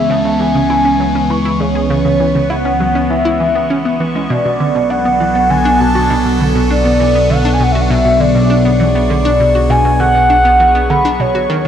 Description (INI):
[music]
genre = ambient, sequencer-driven space music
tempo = 100 BPM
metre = 4/4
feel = straight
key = unclear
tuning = A4 = 440 Hz
[part]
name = mellow horn-like synth lead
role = melody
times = 0.0-11.7 s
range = C#5 to C#6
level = -14 LUFS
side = equal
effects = chorus, tape echo
[part]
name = evolving wavetable pad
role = sustained chords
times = 0.0-11.7 s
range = E3 to A#4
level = -16 LUFS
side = left 1 dB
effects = phaser, built-in reverb
[part]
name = analog pluck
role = riff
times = 0.0-11.7 s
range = B2 to G#4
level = -18 LUFS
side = equal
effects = chorus, tape echo
[part]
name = fat analog bass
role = bass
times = 0.0-11.7 s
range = B1 to D#2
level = -18 LUFS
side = equal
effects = none
[part]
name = bubbling stepped-filter texture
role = texture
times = 0.0-11.7 s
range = B3 to C#6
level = -24 LUFS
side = right 4 dB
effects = chorus, built-in reverb
[sound]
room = wet plate reverb, RT60 2.8 s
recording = dreamy mix soaked in reverb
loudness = -10 LUFS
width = side -9 dB against mid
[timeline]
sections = 0.0-11.7 A section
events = fade-in on analog synth bass 0.0-11.7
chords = 0.0 C#m7; 4.3 Bm7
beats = 0.10 0.70 1.30 | 1.90 2.50 3.10 3.70 | 4.30 4.90 5.50 6.10 | 6.70 7.30 7.90 8.50 | 9.10 9.70 10.30 10.90 | 11.50